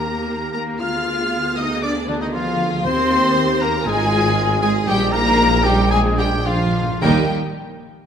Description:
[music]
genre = classical, dramatic, fast romantic movement for symphony orchestra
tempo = 116 BPM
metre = 4/4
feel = uneven beats, rubato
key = Eb major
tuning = A4 = 440 Hz
[part]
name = warm symphonic violin section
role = melody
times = 0.0-7.3 s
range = D5 to F6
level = -24 LUFS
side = left 3 dB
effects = none
[part]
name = mellow oboe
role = second line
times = 0.0-7.2 s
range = D4 to F5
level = -27 LUFS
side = right 1 dB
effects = none
[part]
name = mellow silver concert flute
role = second line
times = 0.0-7.3 s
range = D5 to F6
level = -26 LUFS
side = left 2 dB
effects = none
[part]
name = rich studio violin section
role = second line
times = 0.0-7.3 s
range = D4 to F5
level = -27 LUFS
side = left 1 dB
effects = none
[part]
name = dark symphonic viola section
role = accompaniment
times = 0.0-7.3 s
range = G3 to Ab4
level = -26 LUFS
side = right 1 dB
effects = none
[part]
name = mellow French horn section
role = sustained chords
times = 0.0-7.2 s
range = D3 to F4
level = -25 LUFS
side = left 3 dB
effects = none
[part]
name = mellow tuba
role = bass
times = 0.0-7.2 s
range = Ab1 to Eb2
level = -26 LUFS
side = right 4 dB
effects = none
[part]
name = rich symphonic cello section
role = bass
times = 0.0-7.3 s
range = D3 to F4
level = -26 LUFS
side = right 2 dB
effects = none
[part]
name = rich symphonic double bass section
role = bass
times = 0.0-7.3 s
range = Ab1 to Eb2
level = -26 LUFS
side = right 1 dB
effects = none
[part]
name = timpani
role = percussion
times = 2.8-7.3 s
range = Bb2 to Eb3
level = -28 LUFS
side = equal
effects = none
[sound]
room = wet scoring stage reverb, RT60 1.9 s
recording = none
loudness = -16 LUFS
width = side -8 dB against mid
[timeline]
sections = 0.0-7.0 A section; 7.0-8.1 B section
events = slowing down 1.8-7.0; timpani fill 5.9-7.0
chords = 0.0 Eb; 0.8 Ddim7; 2.9 Eb; 3.9 Fm/Ab; 4.9 Eb/Bb; 5.9 Bb7; 7.0 Eb

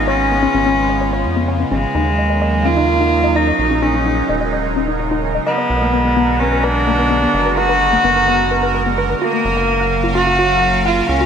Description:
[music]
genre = IDM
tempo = 128 BPM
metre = 4/4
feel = straight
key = Eb minor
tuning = A4 = 435 Hz
[part]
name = rich cello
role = melody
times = 0.0-11.3 s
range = Ab3 to F#4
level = -16 LUFS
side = equal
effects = shimmer reverb, digital delay
[part]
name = phased analog pad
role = sustained chords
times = 0.0-11.3 s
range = Db3 to F5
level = -21 LUFS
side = right 2 dB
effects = phaser, chorus, shimmer reverb
[part]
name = warbly dusty pluck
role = arpeggios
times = 0.0-11.3 s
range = Bb3 to Gb5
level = -21 LUFS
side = left 4 dB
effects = chorus, shimmer reverb, ping-pong delay
[part]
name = rubbery square bass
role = bass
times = 0.0-11.3 s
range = Eb1 to F2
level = -21 LUFS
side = equal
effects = none
[part]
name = bubbling stepped-filter texture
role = texture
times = 1.9-11.3 s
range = Bb4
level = -26 LUFS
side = right 7 dB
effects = chorus, built-in reverb, shimmer reverb
[sound]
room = moderate lush hall reverb, RT60 2.6 s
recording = none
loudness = -13 LUFS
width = side -7 dB against mid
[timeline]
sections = 0.0-11.3 A section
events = none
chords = 0.0 Db7; 1.9 Ebm7; 5.7 Bm6; 9.4 Gbmaj7

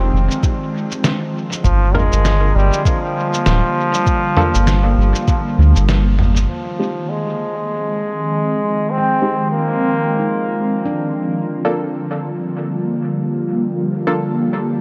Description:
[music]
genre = ambient dub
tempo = 99 BPM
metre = 4/4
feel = swing 59% on 16ths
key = F dorian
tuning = A4 = 441 Hz
[part]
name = bright trombone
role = melody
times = 0.0-11.0 s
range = F3 to C4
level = -24 LUFS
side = equal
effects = dub echo
[part]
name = airy breathy pad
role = sustained chords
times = 0.0-14.8 s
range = D3 to F4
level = -23 LUFS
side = equal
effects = chorus, phaser
[part]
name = filtered dub chord stab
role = stabs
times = 0.0-14.8 s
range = Ab3 to Bb4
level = -28 LUFS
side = equal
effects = chorus, dub echo
[part]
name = soft dub sub bass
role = bass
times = 0.0-6.5 s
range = D1 to D2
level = -16 LUFS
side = equal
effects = none
[part]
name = lo-fi sampler-style drum kit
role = drums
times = 0.3-6.5 s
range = cabasa, snare drum, toms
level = -25 LUFS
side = equal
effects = low-pass filter on perc, low-pass filter on snare, low-pass filter on toms, low-pass filter on room, dub echo
[part]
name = electronic kick drum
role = drums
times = 0.4-5.4 s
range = none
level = -19 LUFS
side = equal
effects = none
[part]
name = handpan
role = arpeggios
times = 9.0-13.3 s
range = D4 to G5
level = -29 LUFS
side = equal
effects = low-pass filter, dub echo
[sound]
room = light reverb, digital ambience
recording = none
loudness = -17 LUFS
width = mono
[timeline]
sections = 0.0-6.5 A section; 6.5-14.8 B section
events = band accent 5.9-6.2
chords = 0.0 Fm7; 1.6 Gm7; 6.5 Fm7; 11.3 Gm7

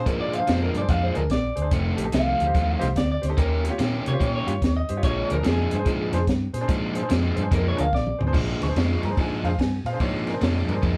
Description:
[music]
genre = electric blues shuffle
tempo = 145 BPM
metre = 4/4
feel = swing 64% on 8ths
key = Bb mixolydian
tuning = A4 = 442 Hz
[part]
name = electric guitar through a small old amp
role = melody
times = 0.0-8.2 s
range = Ab4 to F5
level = -30 LUFS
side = equal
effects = none
[part]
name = bright upright piano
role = accompaniment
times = 0.0-11.0 s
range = D4 to Db6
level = -34 LUFS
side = equal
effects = none
[part]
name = vintage muted fingered electric bass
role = bass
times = 0.0-11.0 s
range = F1 to C3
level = -29 LUFS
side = equal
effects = none
[part]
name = crunchy overdriven guitar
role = riff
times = 0.1-11.0 s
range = F2 to G4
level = -30 LUFS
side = equal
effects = none
[part]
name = compact cocktail drum kit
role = drums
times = 0.1-11.0 s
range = crash cymbal, hi-hat, kick drum, ride cymbal, snare drum, toms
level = -28 LUFS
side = equal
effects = none
[sound]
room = moderate studio reverb, RT60 0.6 s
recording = band playing live in one room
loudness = -24 LUFS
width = mono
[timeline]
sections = 0.0-8.3 A section; 8.3-11.0 A section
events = clean electric guitar solo 0.0-8.3; drum fill 7.9-8.3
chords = 0.0 Bb7; 1.7 F7; 3.4 Eb7; 5.0 Bb7

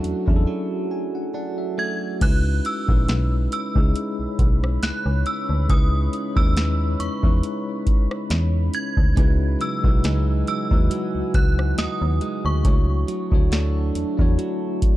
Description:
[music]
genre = contemporary R&B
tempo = 69 BPM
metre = 4/4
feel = swing 54% on 16ths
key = C# minor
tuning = A4 = 441 Hz
[part]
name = synth chime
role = melody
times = 0.0-15.0 s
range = C#6 to G#6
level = -30 LUFS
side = right 2 dB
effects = ensemble chorus, ping-pong delay
[part]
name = bell-like tine electric piano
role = accompaniment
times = 0.0-15.0 s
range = F#3 to G#5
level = -28 LUFS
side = left 3 dB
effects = fast stereo tremolo
[part]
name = deep dark ambient pad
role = sustained chords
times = 0.0-15.0 s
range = C#4 to B5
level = -33 LUFS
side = right 1 dB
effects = chorus, built-in reverb, sidechain pumping
[part]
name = direct-recorded clean electric guitar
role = arpeggios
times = 0.0-2.3, 9.2-15.0 s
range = C#3 to D#4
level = -30 LUFS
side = right 8 dB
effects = spring reverb
[part]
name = metallic FM bass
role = bass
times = 0.0-14.4 s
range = A#1 to E2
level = -21 LUFS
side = equal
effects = none
[part]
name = booming analog drum machine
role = drums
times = 0.0-15.0 s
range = crash cymbal, hi-hat, kick drum, rim click, snare drum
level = -20 LUFS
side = equal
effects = vintage 12-bit sampler grit
[sound]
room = digital ambience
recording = dark, warm production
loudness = -19 LUFS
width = side -15 dB against mid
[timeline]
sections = 0.0-2.2 A section; 2.2-15.0 A section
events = break 0.5-2.2; tine electric piano fill 0.5-2.2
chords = 0.0 Dmaj7; 2.2 C#m9; 9.2 Emaj9; 12.6 Dmaj7/C#

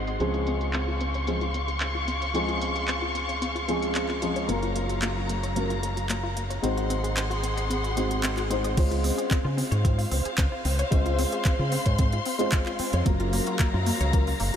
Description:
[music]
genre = nu-disco, nu disco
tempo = 112 BPM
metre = 4/4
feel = straight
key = Db major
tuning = A4 = 440 Hz
[part]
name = dark baby grand piano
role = accompaniment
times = 0.0-14.3 s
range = F3 to C5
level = -30 LUFS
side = equal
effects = wide subtle chorus, sidechain pumping, tape echo
[part]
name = dark chamber string section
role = sustained chords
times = 0.0-14.6 s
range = Gb3 to Db6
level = -31 LUFS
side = left 2 dB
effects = sidechain pumping
[part]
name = wide unison pluck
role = arpeggios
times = 0.0-14.6 s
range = Bb3 to Eb5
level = -34 LUFS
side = left 2 dB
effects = cassette tape, sidechain pumping, tape echo
[part]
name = fingered electric bass with an envelope filter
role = bass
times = 0.0-14.5 s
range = Gb1 to Db3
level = -28 LUFS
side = equal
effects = none
[part]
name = pop drum kit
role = drums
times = 0.1-14.6 s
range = crash cymbal, handclaps, hi-hat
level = -34 LUFS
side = right 1 dB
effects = small room reverb
[part]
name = electronic kick drum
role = drums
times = 8.8-14.2 s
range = none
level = -24 LUFS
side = equal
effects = overdrive, small room reverb
[sound]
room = moderate huge ambient reverb, RT60 8.5 s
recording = dreamy mix soaked in reverb, low-pass filter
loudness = -24 LUFS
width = side -9 dB against mid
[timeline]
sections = 0.0-8.8 A section; 8.8-14.6 B section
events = filter sweep on synth arpeggio sound 0.0-8.8; drop 8.8-14.6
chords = 0.2 Dbmaj7; 4.5 Gbmaj7; 6.6 Ab7; 8.8 Dbmaj7; 13.1 Gbmaj7

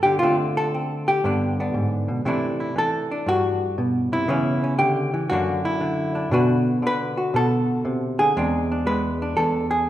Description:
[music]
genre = solo jazz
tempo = 118 BPM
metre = 4/4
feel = swing 68% on 8ths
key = unclear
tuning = A4 = 440 Hz
[part]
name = hollow-body jazz guitar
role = solo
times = 0.0-9.9 s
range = E2 to B4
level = -20 LUFS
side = equal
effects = none
[sound]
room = wet recital hall reverb, RT60 1.7 s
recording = recorded in a church or concert hall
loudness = -20 LUFS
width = side -13 dB against mid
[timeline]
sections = 0.0-2.2 A section; 2.2-9.9 B section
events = none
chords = 0.2 D5; 1.2 G; 2.2 C69; 4.3 C#m7b5; 5.3 F#aug7; 6.3 Bm7; 8.3 E7b13

